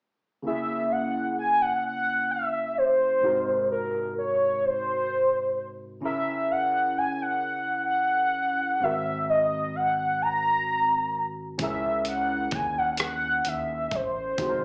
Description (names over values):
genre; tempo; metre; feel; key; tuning
slow six-eight R&B; 43 BPM (dotted quarters); 6/8; straight; C# dorian; A4 = 440 Hz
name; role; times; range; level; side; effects
overdriven tine electric piano; accompaniment; 0.4-14.6 s; G#2 to A#4; -36 LUFS; equal; phaser
warm velvety synth lead; melody; 0.5-14.6 s; A#4 to A#5; -27 LUFS; equal; chorus, slapback echo
round analog bass; bass; 11.6-14.6 s; G#1 to D#2; -40 LUFS; equal; none
dusty soul sampler-style drum kit; drums; 11.6-14.6 s; hi-hat, kick drum, rim click; -32 LUFS; equal; none
room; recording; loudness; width
moderate club reverb, RT60 0.5 s; live gig heard through the venue's PA, club reverb, small speaker sound; -26 LUFS; mono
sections
0.4-14.6 A section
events
none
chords
0.4 C#m6; 3.2 G#9; 6.0 C#m6; 8.8 G#9; 11.6 C#m69